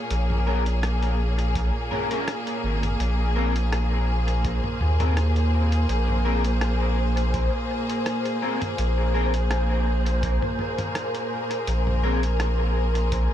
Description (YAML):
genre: ambient dub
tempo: 83 BPM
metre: 4/4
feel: swing 54% on 16ths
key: unclear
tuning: A4 = 440 Hz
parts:
  - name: rich studio string section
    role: sustained chords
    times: 0.0-13.3 s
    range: Bb2 to Db5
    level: -28 LUFS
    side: equal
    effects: none
  - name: round analog bass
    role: bass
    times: 0.1-13.3 s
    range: Ab1 to Eb2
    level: -22 LUFS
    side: equal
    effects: none
  - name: lo-fi sampler-style drum kit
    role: drums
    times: 0.1-13.3 s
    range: hi-hat, rim click, toms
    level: -34 LUFS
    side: equal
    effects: dub echo
  - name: electric guitar at the edge of break-up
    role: stabs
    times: 0.5-12.2 s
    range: C4 to Bb4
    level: -32 LUFS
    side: left 3 dB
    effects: analog chorus, dub echo
  - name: electronic kick drum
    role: drums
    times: 1.6-13.3 s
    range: none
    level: -30 LUFS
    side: equal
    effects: overdrive
  - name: wind-like tuned noise texture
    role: texture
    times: 3.6-13.3 s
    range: C5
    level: -33 LUFS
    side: equal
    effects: built-in reverb
room: light reverb, digital ambience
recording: none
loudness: -21 LUFS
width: side -11 dB against mid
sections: 0.0-13.3 A section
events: none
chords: 0.0 Bbm7; 3.0 Abadd9/Bb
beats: | 0.11 0.83 1.56 2.28 | 3.00 3.73 4.45 5.17 | 5.89 6.62 7.34 8.06 | 8.79 9.51 10.23 10.95 | 11.68 12.40 13.12